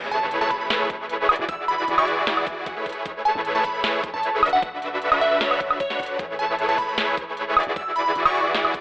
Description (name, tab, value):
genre	future bass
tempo	153 BPM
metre	4/4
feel	half-time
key	unclear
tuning	A4 = 440 Hz
part	supersaw chords	riff	0.0-8.8 s	D3 to F#5	-23 LUFS	equal	sidechain pumping
part	warm 808-style bass	bass	0.0-8.8 s	D1 to A1	-47 LUFS	equal	tube saturation, sidechain pumping
part	impact	sound effects	0.0-1.5 s	none	-38 LUFS	equal	none
part	glassy wavetable pluck	melody	0.1-8.6 s	C#5 to E6	-24 LUFS	equal	chorus, sidechain pumping
part	trap drum kit	drums	0.1-8.8 s	hi-hat, snare drum, woodblock	-21 LUFS	equal	overdrive
part	electronic kick drum	drums	0.5-8.8 s	none	-34 LUFS	equal	overdrive
room	light reverb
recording	telephone sound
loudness	-20 LUFS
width	side -23 dB against mid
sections	0.0-8.8 A section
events	impact 0.0-1.5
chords	0.0 E7; 4.6 D6; 6.2 E7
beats	0.31 0.70 1.10 | 1.49 1.88 2.27 2.66 | 3.06 3.45 3.84 4.23 | 4.62 5.02 5.41 5.80 | 6.19 6.59 6.98 7.37 | 7.76 8.15 8.55